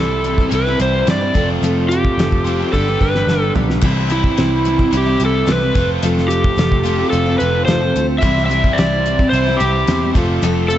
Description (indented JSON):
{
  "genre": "folk rock and heartland rock",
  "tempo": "109 BPM",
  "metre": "4/4",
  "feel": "straight",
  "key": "C major",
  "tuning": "A4 = 438 Hz",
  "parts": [
    { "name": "overdriven slide guitar", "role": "melody", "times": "0.0-10.8 s", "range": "E4 to E5", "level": "-19 LUFS", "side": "equal", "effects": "slapback echo" },
    { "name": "picked steel-string acoustic guitar", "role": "accompaniment", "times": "0.0-10.8 s", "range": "C3 to C5", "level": "-21 LUFS", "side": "left 2 dB", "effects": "none" },
    { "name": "overdriven electric guitar", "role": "riff", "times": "0.0-10.8 s", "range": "F2 to G4", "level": "-22 LUFS", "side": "right 2 dB", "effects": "none" },
    { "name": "picked electric bass", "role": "bass", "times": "0.0-10.8 s", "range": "F1 to G2", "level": "-20 LUFS", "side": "equal", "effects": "none" },
    { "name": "damped 70s drum kit", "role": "drums", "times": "0.2-10.8 s", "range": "crash cymbal, hi-hat, kick drum, snare drum, toms", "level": "-19 LUFS", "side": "equal", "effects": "none" }
  ],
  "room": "light reverb, small room ambience",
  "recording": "nothing above 8.0 kHz",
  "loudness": "-13 LUFS",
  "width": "side -12 dB against mid",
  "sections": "0.0-3.8 A section; 3.8-10.8 A section",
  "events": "drum fill 2.7-3.8",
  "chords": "0.0 C; 1.3 F; 2.7 G; 3.8 C; 5.8 F; 8.2 C; 10.2 F"
}